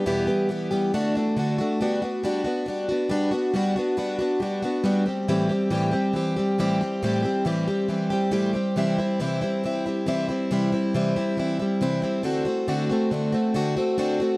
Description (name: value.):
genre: rock.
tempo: 138 BPM.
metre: 4/4.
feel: straight.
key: G major.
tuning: A4 = 442 Hz.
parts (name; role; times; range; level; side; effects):
picked plugged-in twelve-string acoustic guitar; solo; 0.0-14.4 s; E2 to G4; -22 LUFS; equal; tape echo.
room: little or no reverb.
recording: dry, close 1970s-style studio recording.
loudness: -22 LUFS.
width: side -22 dB against mid.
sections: 0.0-1.8 A section; 1.8-14.4 B section.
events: none.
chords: 0.1 Em; 0.9 D; 1.8 Gmaj7; 5.1 Am7; 8.8 C; 12.2 D7.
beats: | 0.06 0.50 0.93 1.37 | 1.80 2.24 2.67 3.11 | 3.54 3.98 4.42 4.85 | 5.29 5.72 6.16 6.59 | 7.03 7.46 7.90 8.33 | 8.77 9.20 9.64 10.07 | 10.51 10.94 11.38 11.81 | 12.25 12.68 13.12 13.55 | 13.98.